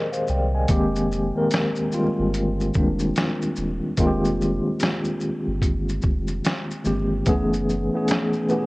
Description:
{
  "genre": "lo-fi hip hop",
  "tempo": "73 BPM",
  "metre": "4/4",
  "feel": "swing 62% on 16ths",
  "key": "unclear",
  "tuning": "A4 = 442 Hz",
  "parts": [
    { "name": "mellow tine electric piano", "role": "accompaniment", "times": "0.0-8.7 s", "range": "Eb3 to Ab5", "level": "-22 LUFS", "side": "equal", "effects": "medium tremolo, cassette tape, low-pass filter" },
    { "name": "lo-fi sampler-style drum kit", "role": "drums", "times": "0.1-8.7 s", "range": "hi-hat, kick drum, shaker, snare drum", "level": "-25 LUFS", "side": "equal", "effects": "none" },
    { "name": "warm sub bass", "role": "bass", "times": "0.3-7.9 s", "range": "Eb1 to C2", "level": "-27 LUFS", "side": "equal", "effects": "none" }
  ],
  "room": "light reverb",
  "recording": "worn, warbling old tape, cassette tape, warbly pitch drift",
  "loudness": "-20 LUFS",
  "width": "side -22 dB against mid",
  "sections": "0.7-8.7 A section",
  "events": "none",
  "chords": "0.0 Fm11; 7.3 Gbm11",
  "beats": "| 0.69 1.51 2.33 3.15 | 3.98 4.80 5.62 6.44 | 7.26 8.09"
}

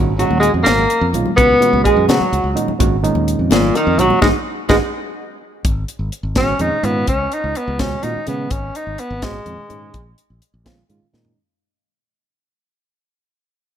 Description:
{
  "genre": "electric jazz fusion",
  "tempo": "84 BPM (dotted quarters)",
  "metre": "6/8",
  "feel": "straight",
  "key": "G# dorian",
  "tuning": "A4 = 436 Hz",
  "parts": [
    { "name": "overdriven reed electric piano", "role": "accompaniment", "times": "0.0-11.4 s", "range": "A#2 to G#4", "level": "-22 LUFS", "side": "right 6 dB", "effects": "none" },
    { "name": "modern bright fingered electric bass", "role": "bass", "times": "0.0-11.3 s", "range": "G#1 to C#3", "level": "-21 LUFS", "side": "equal", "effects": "none" },
    { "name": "mellow tenor saxophone", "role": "melody", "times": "0.2-10.1 s", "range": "A#2 to D#4", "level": "-18 LUFS", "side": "equal", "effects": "none" },
    { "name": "vintage hollow-body jazz guitar", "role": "second line", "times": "0.2-4.8 s", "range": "A#3 to B4", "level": "-20 LUFS", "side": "equal", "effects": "none" },
    { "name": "crisp fusion drum kit", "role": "drums", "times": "0.2-11.4 s", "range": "hi-hat, kick drum, snare drum, toms", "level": "-20 LUFS", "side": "left 1 dB", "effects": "none" },
    { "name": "congas", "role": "percussion", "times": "0.3-4.8 s", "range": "none", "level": "-26 LUFS", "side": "left 6 dB", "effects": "none" }
  ],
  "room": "moderate echo chamber reverb, RT60 2.1 s",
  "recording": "none",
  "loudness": "-14 LUFS",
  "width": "side -9 dB against mid",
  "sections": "0.0-5.6 A section; 5.6-11.4 B section",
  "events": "drum fill 4.2-5.6, 11.1; band accent 4.2-5.6; fade-out 5.6-11.4; tenor saxophone solo 5.6-11.4",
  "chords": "0.0 G#9sus4; 1.4 C#9sus4; 2.8 G#9sus4; 4.2 G#m7; 5.6 G#sus4; 7.1 C#sus24; 8.5 G#sus4; 9.9 A#m7",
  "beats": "0.66 | 1.37 2.08 | 2.79 3.51 | 4.22 4.93 | 5.64 6.36 | 7.07 7.79 | 8.50 9.22 | 9.94 10.65"
}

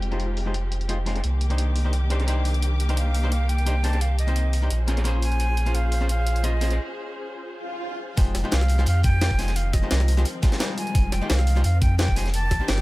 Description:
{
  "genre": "liquid drum and bass",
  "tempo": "173 BPM",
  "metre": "4/4",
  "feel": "swing 53% on 16ths",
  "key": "F minor",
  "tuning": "A4 = 440 Hz",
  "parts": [
    { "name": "archtop guitar, miked and amplified", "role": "accompaniment", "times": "0.0-12.8 s", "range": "G3 to C5", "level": "-32 LUFS", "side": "left 2 dB", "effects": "low-pass filter, ping-pong delay" },
    { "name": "dark symphonic string section", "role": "sustained chords", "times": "0.0-12.8 s", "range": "Eb3 to D6", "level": "-35 LUFS", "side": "left 1 dB", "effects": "none" },
    { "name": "warm sub bass", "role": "bass", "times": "0.0-12.8 s", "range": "F1 to F2", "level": "-22 LUFS", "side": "equal", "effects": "none" },
    { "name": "crunchy breakbeat drum kit", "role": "drums", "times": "0.0-12.8 s", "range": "hi-hat, snare drum", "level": "-36 LUFS", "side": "equal", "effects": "high-pass filter on hats, low-pass filter on hats, small room ambience, high-pass filter on snare, low-pass filter on snare, high-pass filter on room, low-pass filter on room" },
    { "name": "jungle sampler-style drum kit", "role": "drums", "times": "0.0-12.8 s", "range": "hi-hat, snare drum", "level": "-30 LUFS", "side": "equal", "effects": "low-pass filter on hats, small room ambience, low-pass filter on snare, low-pass filter on cymbals" },
    { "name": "breathy silver concert flute", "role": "melody", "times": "3.0-12.8 s", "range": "Eb5 to A5", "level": "-31 LUFS", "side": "right 1 dB", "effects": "tape echo" },
    { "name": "swell", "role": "sound effects", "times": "7.6-8.2 s", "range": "none", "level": "-34 LUFS", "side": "right 1 dB", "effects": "none" },
    { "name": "electronic kick drum", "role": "drums", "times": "8.2-12.6 s", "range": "none", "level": "-21 LUFS", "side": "equal", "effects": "small room ambience" }
  ],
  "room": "small room ambience",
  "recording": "none",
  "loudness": "-20 LUFS",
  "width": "side -19 dB against mid",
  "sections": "0.0-8.2 A section; 8.2-12.8 B section",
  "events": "break 6.8-8.2; swell 7.6-8.2; drop 8.2-12.8",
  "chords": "0.0 Fm7; 1.2 Cm7; 4.7 Bbm7; 8.2 Fm7",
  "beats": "0.20 0.55 0.89 | 1.24 1.59 1.93 2.28 | 2.63 2.97 3.32 3.67 | 4.01 4.36 4.71 5.05 | 5.40 5.75 6.09 6.44 | 6.79 7.13 7.48 7.83 | 8.18 8.52 8.87 9.22 | 9.56 9.91 10.26 10.60 | 10.95 11.30 11.64 11.99 | 12.34 12.68"
}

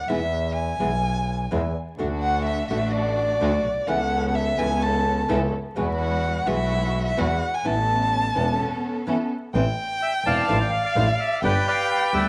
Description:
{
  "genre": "tango",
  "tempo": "127 BPM",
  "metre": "4/4",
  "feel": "rubato",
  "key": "A major",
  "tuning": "A4 = 440 Hz",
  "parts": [
    { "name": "warm violin", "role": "second line", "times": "0.0-12.3 s", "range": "D5 to A5", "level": "-28 LUFS", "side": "equal", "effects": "none" },
    { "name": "rich double bass", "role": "bass", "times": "0.0-12.3 s", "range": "E1 to E2", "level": "-28 LUFS", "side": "equal", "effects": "none" },
    { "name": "nylon-string guitar", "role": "accompaniment", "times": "0.1-12.3 s", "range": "B2 to G4", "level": "-30 LUFS", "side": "equal", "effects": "none" },
    { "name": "warm studio string section", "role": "stabs", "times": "2.0-9.3 s", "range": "G#3 to A4", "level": "-32 LUFS", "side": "equal", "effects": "none" },
    { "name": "bandoneon", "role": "melody", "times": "10.0-12.3 s", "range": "G4 to A5", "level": "-25 LUFS", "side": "equal", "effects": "none" }
  ],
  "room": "moderate spring reverb, RT60 1.7 s, small room ambience",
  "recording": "vinyl crackle",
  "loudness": "-23 LUFS",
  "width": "mono",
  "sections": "0.0-9.5 A section; 9.5-12.3 B section",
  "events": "violin solo 0.0-9.5; break 8.6-9.5",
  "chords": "0.1 E; 2.0 D; 3.9 Aadd9/C#; 5.8 Eadd9; 7.7 Aadd9; 9.5 Amadd9; 10.5 Dmadd9/A; 11.4 G",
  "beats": "| 0.09 0.56 1.04 1.51 | 1.99 2.46 2.93 3.41 | 3.88 4.35 4.82 5.29 | 5.76 6.24 6.71 7.18 | 7.65 8.12 8.59 9.07 | 9.54 10.02 10.49 10.96 | 11.43 11.90"
}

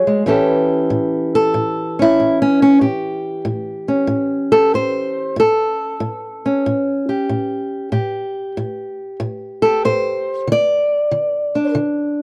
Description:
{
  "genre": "acoustic country blues, solo or duo",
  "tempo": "94 BPM",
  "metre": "4/4",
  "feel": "swing 68% on 8ths",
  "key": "A mixolydian",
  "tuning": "A4 = 440 Hz",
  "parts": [
    { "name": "fingerpicked old ladder-braced acoustic guitar", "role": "solo", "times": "0.0-12.2 s", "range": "A2 to D5", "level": "-18 LUFS", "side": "equal", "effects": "none" }
  ],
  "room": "studio ambience",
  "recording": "dry, close 1970s-style studio recording",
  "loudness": "-18 LUFS",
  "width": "mono",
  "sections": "0.3-12.2 A section",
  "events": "steel-string acoustic guitar solo 0.3-12.2",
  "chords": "0.3 A7; 10.5 N.C.",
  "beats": "| 0.26 0.90 1.54 2.18 | 2.82 3.46 4.09 4.73 | 5.37 6.01 6.64 7.28 | 7.92 8.56 9.19 9.83 | 10.47 11.10 11.74"
}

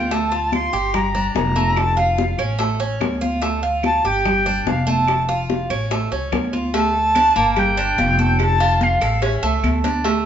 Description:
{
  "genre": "latin, Cuban son and guajira",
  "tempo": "145 BPM",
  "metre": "4/4",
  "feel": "straight",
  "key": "D minor",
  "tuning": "A4 = 439 Hz",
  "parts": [
    { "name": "jazz flute", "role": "melody", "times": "0.0-9.8 s", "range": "E5 to C6", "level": "-19 LUFS", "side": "left 1 dB", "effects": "none" },
    { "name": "Cuban tres", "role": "arpeggios", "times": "0.0-10.3 s", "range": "A3 to A4", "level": "-23 LUFS", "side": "right 4 dB", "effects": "none" },
    { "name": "upright bass", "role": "bass", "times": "0.0-10.3 s", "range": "F1 to D2", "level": "-23 LUFS", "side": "equal", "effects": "none" },
    { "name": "bongos and cowbell", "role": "percussion", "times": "0.1-10.3 s", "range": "none", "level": "-27 LUFS", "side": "left 5 dB", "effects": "none" },
    { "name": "congas", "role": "percussion", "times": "0.1-10.3 s", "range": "none", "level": "-26 LUFS", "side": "left 2 dB", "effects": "none" },
    { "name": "claves", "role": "percussion", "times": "0.5-9.8 s", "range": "none", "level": "-32 LUFS", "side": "right 3 dB", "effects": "none" }
  ],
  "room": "moderate large studio reverb, RT60 1.2 s",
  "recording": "band playing live in one room, nothing above 7.5 kHz",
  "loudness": "-16 LUFS",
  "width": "side -9 dB against mid",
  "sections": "0.0-6.7 A section; 6.7-10.3 B section",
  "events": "none",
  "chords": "0.1 Dm; 0.9 Gm7; 1.8 F; 2.6 A; 3.4 Dm; 4.3 G5; 5.1 F; 5.9 A; 6.7 D5; 7.6 Gm7; 8.4 F; 9.2 A",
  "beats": "| 0.11 0.53 0.94 1.35 | 1.77 2.18 2.60 3.01 | 3.43 3.84 4.25 4.67 | 5.08 5.50 5.91 6.33 | 6.74 7.15 7.57 7.98 | 8.39 8.81 9.22 9.64 | 10.05"
}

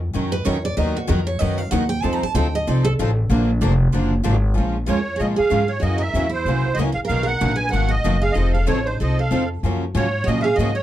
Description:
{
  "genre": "acoustic string swing (jazz manouche)",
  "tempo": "189 BPM",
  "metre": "4/4",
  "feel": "swing 60% on 8ths",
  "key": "Bb minor from 4.6 s",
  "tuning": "A4 = 438 Hz",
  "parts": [
    { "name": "upright bass", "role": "bass", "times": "0.0-10.8 s", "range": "F1 to Bb2", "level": "-21 LUFS", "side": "equal", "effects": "none" },
    { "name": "picked steel-string acoustic guitar", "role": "accompaniment", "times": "0.1-10.7 s", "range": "B2 to Bb4", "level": "-27 LUFS", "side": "left 6 dB", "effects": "none" },
    { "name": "picked steel-string acoustic guitar", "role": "accompaniment", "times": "0.1-10.7 s", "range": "B2 to Bb4", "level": "-26 LUFS", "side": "right 4 dB", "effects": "none" },
    { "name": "picked steel-string acoustic guitar", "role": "second line", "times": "0.3-10.8 s", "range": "Eb4 to Bb5", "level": "-25 LUFS", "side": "right 3 dB", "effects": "none" },
    { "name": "musette accordion", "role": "melody", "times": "4.9-10.8 s", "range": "C5 to Ab5", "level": "-24 LUFS", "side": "right 2 dB", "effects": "none" }
  ],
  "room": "moderate club ambience, RT60 0.5 s",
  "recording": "dark, warm production",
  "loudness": "-18 LUFS",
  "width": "side -13 dB against mid",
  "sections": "0.0-4.6 A section; 4.6-10.8 B section",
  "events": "steel-string acoustic guitar solo 0.0-4.6",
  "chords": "0.0 Ebm7; 0.8 Bmaj7/D#; 2.0 F7; 3.3 Bb; 4.6 Bbm7; 5.8 Gb7; 7.1 Bmaj7; 8.4 F7; 9.6 Gbmaj7",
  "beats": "0.14 0.46 | 0.78 1.09 1.41 1.72 | 2.04 2.35 2.67 2.98 | 3.30 3.61 3.93 4.25 | 4.56 4.88 5.19 5.51 | 5.83 6.14 6.46 6.78 | 7.10 7.41 7.73 8.05 | 8.36 8.68 9.00 9.31 | 9.63 9.95 10.27 10.58"
}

